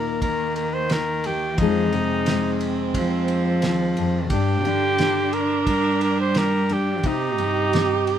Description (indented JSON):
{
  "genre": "acoustic folk-pop ballad",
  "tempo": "88 BPM",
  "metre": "4/4",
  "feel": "straight",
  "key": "unclear",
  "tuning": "A4 = 440 Hz",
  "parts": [
    { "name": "warm cor anglais", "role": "melody", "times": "0.0-8.2 s", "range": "Eb4 to C5", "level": "-24 LUFS", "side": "equal", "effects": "none" },
    { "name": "dark viola", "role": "second line", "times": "0.0-8.2 s", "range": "Bb3 to G4", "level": "-26 LUFS", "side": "right 8 dB", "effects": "none" },
    { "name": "fingerpicked steel-string acoustic guitar", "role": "accompaniment", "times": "0.0-8.2 s", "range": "Eb2 to Ab4", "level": "-26 LUFS", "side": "left 7 dB", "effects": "none" },
    { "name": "rich cello", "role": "bass", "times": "0.0-8.2 s", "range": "G2 to G3", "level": "-25 LUFS", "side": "right 1 dB", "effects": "none" },
    { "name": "cloth-damped thuddy drum kit", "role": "drums", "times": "0.2-8.2 s", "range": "kick drum, ride cymbal, snare drum", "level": "-30 LUFS", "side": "right 1 dB", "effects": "none" }
  ],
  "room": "light reverb",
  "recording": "minimal, uncompressed stereo recording",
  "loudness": "-19 LUFS",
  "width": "side -9 dB against mid",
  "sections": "0.0-8.2 A section",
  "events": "none",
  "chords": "0.0 Eb; 1.6 Fm7; 4.3 G5; 7.0 Cm"
}